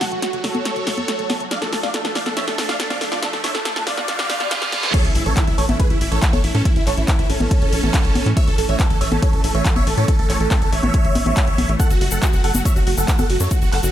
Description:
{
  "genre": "uplifting trance",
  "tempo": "140 BPM",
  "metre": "4/4",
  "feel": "straight",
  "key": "A major",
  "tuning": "A4 = 440 Hz",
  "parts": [
    { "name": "big supersaw lead", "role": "melody", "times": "0.0-13.9 s", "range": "C#4 to F#5", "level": "-23 LUFS", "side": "right 1 dB", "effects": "phaser, sidechain pumping, digital delay" },
    { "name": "supersaw pad", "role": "sustained chords", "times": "0.0-13.9 s", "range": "E3 to F#4", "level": "-28 LUFS", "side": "right 2 dB", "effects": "phaser, sidechain pumping" },
    { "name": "tight sequencer bass", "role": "bass", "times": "0.0-13.9 s", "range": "D1 to A2", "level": "-22 LUFS", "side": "equal", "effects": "sidechain pumping" },
    { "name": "punchy analog drum machine", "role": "drums", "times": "0.0-13.9 s", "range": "congas, crash cymbal, handclaps, hi-hat, snare drum", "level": "-24 LUFS", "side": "left 1 dB", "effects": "sidechain pumping on hats, sidechain pumping on perc, sidechain pumping on cymbals" },
    { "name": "riser, reverse cymbal and impact", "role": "sound effects", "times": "2.0-6.7 s", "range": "none", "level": "-28 LUFS", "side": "right 1 dB", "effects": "none" },
    { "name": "electronic kick drum", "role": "drums", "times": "4.9-13.6 s", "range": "none", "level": "-18 LUFS", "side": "equal", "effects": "none" },
    { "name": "egg shaker", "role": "percussion", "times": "11.8-13.9 s", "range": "none", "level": "-28 LUFS", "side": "left 6 dB", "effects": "none" }
  ],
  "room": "little or no reverb",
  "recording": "high-pass filter",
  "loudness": "-16 LUFS",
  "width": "side -11 dB against mid",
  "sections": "0.0-4.9 A section; 4.9-13.9 B section",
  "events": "build-up 0.0-4.9; drum fill 0.0-4.9; filter sweep 0.0-4.9; reverse cymbal 4.1-4.9; drop 4.9-13.9; impact 4.9-6.7",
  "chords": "0.0 F#m; 1.5 Dm; 4.9 A; 11.8 F#m"
}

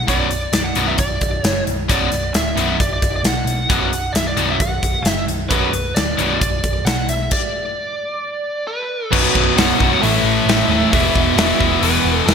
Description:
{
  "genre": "hard rock",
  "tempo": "133 BPM",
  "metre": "4/4",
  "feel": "straight",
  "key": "B minor",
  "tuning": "A4 = 440 Hz",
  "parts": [
    { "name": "biting lead guitar", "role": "melody", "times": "0.0-12.3 s", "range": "B4 to F#5", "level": "-22 LUFS", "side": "equal", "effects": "overdrive, digital delay" },
    { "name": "hollow-body short-scale picked electric bass", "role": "bass", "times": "0.0-12.3 s", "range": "B0 to B1", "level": "-23 LUFS", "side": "equal", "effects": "none" },
    { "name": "cranked stack guitar", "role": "riff", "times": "0.1-6.4, 9.1-12.3 s", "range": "B1 to A3", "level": "-24 LUFS", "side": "right 12 dB", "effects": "overdrive" },
    { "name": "scooped high-gain guitar", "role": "riff", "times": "0.1-6.4, 9.1-12.3 s", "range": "B1 to A3", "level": "-20 LUFS", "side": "left 11 dB", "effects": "distortion" },
    { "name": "big rock drum kit", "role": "drums", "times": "0.1-12.3 s", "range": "crash cymbal, hi-hat, kick drum, snare drum", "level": "-19 LUFS", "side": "equal", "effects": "gated reverb" },
    { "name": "percussive tonewheel organ", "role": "sustained chords", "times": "9.1-12.3 s", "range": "E3 to C#5", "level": "-31 LUFS", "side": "right 1 dB", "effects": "none" },
    { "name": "crunchy overdriven guitar", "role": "riff", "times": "9.1-12.3 s", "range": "B1 to A3", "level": "-23 LUFS", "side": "equal", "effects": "none" }
  ],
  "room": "light reverb, small room ambience",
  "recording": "bright 1980s-style digital production",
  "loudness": "-15 LUFS",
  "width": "side -7 dB against mid",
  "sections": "0.0-9.1 A section; 9.1-12.3 B section",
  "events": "stop 7.3-9.1",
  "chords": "0.0 Bm; 9.1 B5; 10.0 A5; 10.9 E5"
}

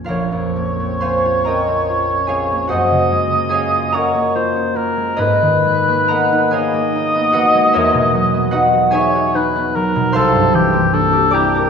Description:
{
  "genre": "classical, impressionist duo for cor anglais and harp",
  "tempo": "41-52 BPM (dotted quarters)",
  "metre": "6/8",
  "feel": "rubato",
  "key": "unclear",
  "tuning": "A4 = 439 Hz",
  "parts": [
    { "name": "concert harp", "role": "accompaniment", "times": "0.0-11.7 s", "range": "Bb1 to D6", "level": "-16 LUFS", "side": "equal", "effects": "none" },
    { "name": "warm cor anglais", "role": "melody", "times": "0.1-11.7 s", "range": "G4 to Eb5", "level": "-17 LUFS", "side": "left 1 dB", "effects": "none" }
  ],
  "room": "wet scoring stage reverb, RT60 1.8 s",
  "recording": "minimal, uncompressed stereo recording",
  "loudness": "-13 LUFS",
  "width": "side -6 dB against mid",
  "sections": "0.1-11.7 A section",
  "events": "none",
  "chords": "0.1 Bbmadd9; 2.7 Gbmaj9; 5.2 Abmadd9; 7.8 Emaj9; 10.2 C13"
}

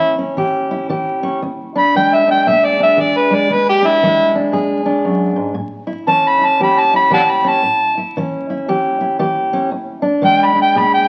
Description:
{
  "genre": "acoustic country blues, solo or duo",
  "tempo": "116 BPM",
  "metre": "4/4",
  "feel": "swing 63% on 8ths",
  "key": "E mixolydian",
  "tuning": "A4 = 435 Hz",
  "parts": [
    { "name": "overdriven harmonica", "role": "melody", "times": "0.0-11.1 s", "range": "E4 to B5", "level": "-14 LUFS", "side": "equal", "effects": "none" },
    { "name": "fingerpicked steel-string acoustic guitar", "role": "accompaniment", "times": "0.0-11.1 s", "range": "E2 to G#4", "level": "-20 LUFS", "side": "equal", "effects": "none" }
  ],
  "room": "wet large studio reverb, RT60 1.3 s",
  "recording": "very old 78 rpm record, vinyl crackle",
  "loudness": "-15 LUFS",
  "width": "mono",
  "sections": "0.0-11.1 A section",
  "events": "harmonica solo 0.0-11.1",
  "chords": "0.0 A7 (rootless); 1.4 E7; 5.6 A7; 9.7 E7"
}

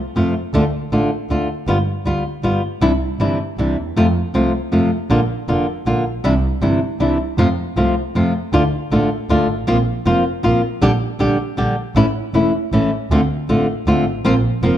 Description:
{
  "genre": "tango",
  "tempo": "158 BPM",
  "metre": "3/4",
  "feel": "rubato",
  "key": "F major, D minor from 8.5 s",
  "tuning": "A4 = 440 Hz",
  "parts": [
    { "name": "flamenco guitar", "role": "accompaniment", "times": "0.2-14.8 s", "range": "C3 to G4", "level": "-17 LUFS", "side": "equal", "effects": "none" },
    { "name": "warm double bass", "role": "bass", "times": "0.2-14.8 s", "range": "E1 to F2", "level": "-21 LUFS", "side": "right 1 dB", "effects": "none" }
  ],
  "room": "light reverb",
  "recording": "dark, warm production",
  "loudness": "-15 LUFS",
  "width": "side -11 dB against mid",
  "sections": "0.0-8.5 A section; 8.5-14.8 B section",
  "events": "none",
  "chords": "0.0 F; 0.5 Dm; 1.7 G7; 2.8 Cadd9; 4.0 F; 5.1 Bb; 6.2 Cadd9; 7.4 F; 8.5 Dm; 9.7 Bbsus2; 10.8 Gm/Bb; 12.0 A; 13.1 Dm7; 14.2 Bbsus2"
}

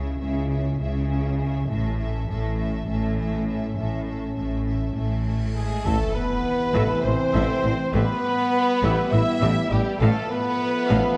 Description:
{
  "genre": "cinematic, epic orchestral film score",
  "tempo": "202 BPM (eighths)",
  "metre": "7/8",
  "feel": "straight",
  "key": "A minor from 5.9 s",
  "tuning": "A4 = 440 Hz",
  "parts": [
    { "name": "warm symphonic violin section", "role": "melody", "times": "0.0-11.2 s", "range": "G4 to E5", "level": "-37 LUFS", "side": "equal", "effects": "none" },
    { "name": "warm symphonic violin section", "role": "second line", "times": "0.0-11.2 s", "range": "G4 to E5", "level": "-38 LUFS", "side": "equal", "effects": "none" },
    { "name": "warm symphonic viola section", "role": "accompaniment", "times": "0.0-11.2 s", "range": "C#4 to F5", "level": "-37 LUFS", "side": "equal", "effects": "none" },
    { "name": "warm French horn section", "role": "sustained chords", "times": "0.0-11.2 s", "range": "G3 to E4", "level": "-31 LUFS", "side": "equal", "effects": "none" },
    { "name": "rich symphonic cello section", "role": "bass", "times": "0.0-11.0 s", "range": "A2 to C#3", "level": "-29 LUFS", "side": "equal", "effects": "none" },
    { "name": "rich symphonic double bass section", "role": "bass", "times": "0.0-11.0 s", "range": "A1 to C#2", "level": "-29 LUFS", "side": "equal", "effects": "none" },
    { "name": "cymbal swell and impact", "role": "sound effects", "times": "5.5-7.9 s", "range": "none", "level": "-34 LUFS", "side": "equal", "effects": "none" },
    { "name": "concert flute", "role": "second line", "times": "5.6-11.2 s", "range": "G5 to E6", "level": "-34 LUFS", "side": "equal", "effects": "none" },
    { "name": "warm trumpet", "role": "stabs", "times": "5.6-11.2 s", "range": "G4 to E5", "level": "-32 LUFS", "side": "equal", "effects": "none" },
    { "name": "mellow trombone section", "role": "sustained chords", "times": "5.9-11.2 s", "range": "C3 to B3", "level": "-33 LUFS", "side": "equal", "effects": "none" },
    { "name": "warm tuba", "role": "bass", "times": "5.9-11.0 s", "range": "A1", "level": "-34 LUFS", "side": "equal", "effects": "none" }
  ],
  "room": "moderate scoring stage reverb, RT60 1.5 s",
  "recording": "dark, warm production",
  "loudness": "-24 LUFS",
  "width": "mono",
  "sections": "0.0-5.9 A section; 5.9-11.2 B section",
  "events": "cymbal swell 5.5-5.9; impact 5.9-7.9",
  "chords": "0.0 C#m; 1.7 A; 5.9 Amadd9; 7.9 Em/A; 10.0 F/A"
}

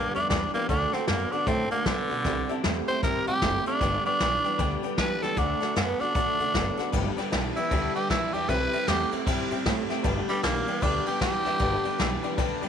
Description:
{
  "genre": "rockabilly",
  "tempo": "154 BPM",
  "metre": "4/4",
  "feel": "swing 62% on 8ths",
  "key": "G major",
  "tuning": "A4 = 439 Hz",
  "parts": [
    { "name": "growling tenor saxophone", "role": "melody", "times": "0.0-12.4 s", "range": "D3 to C5", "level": "-28 LUFS", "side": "equal", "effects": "none" },
    { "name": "honky-tonk upright piano", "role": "accompaniment", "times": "0.0-12.7 s", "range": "A4 to A5", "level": "-36 LUFS", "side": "left 11 dB", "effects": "none" },
    { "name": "picked steel-string acoustic guitar", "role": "accompaniment", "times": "0.0-12.7 s", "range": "G2 to A4", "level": "-34 LUFS", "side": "left 12 dB", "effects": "none" },
    { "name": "electric guitar through a small old amp", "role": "riff", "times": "0.0-12.7 s", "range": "G2 to B3", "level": "-33 LUFS", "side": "right 15 dB", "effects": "spring reverb" },
    { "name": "upright bass", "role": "bass", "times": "0.0-12.7 s", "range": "F#1 to C3", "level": "-33 LUFS", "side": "equal", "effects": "none" },
    { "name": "vintage brush drum kit", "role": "drums", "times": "0.2-12.7 s", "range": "crash cymbal, hi-hat, kick drum, ride cymbal, snare drum", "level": "-30 LUFS", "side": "equal", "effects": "none" }
  ],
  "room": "light reverb, studio ambience",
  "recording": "1960s-style stereo with parts hard left and right",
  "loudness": "-24 LUFS",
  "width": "side -8 dB against mid",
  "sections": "0.0-6.9 A section; 6.9-12.7 B section",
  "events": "tenor saxophone solo 6.9-12.7",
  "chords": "0.0 G; 0.7 D; 2.3 C; 3.8 G; 5.4 D; 6.9 G; 8.5 C; 10.0 G"
}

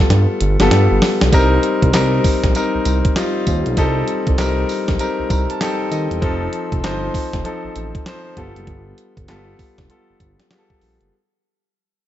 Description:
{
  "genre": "R&B, new jack swing",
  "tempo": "98 BPM",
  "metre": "4/4",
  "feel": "swing 63% on 16ths",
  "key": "C dorian",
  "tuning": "A4 = 440 Hz",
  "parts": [
    { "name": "warm concert grand piano", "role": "accompaniment", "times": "0.0-11.1 s", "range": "F3 to Bb5", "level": "-19 LUFS", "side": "left 2 dB", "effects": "none" },
    { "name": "smooth synth bass", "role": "bass", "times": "0.1-11.1 s", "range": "E1 to G2", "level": "-18 LUFS", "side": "right 1 dB", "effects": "none" },
    { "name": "clean 12-bit digital drum machine", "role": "drums", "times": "0.1-11.1 s", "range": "handclaps, hi-hat, kick drum, snare drum, tambourine", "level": "-19 LUFS", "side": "equal", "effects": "none" }
  ],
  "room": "digital ambience",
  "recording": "nothing above 7.9 kHz",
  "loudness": "-15 LUFS",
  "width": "side -12 dB against mid",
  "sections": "0.0-1.3 A section; 1.3-11.1 B section",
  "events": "drum fill 0.1-1.3; fade-out 1.3-11.1; grand piano fill 5.0-6.2",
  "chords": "0.0 G9; 1.3 Cm7; 6.2 F7; 8.4 G9"
}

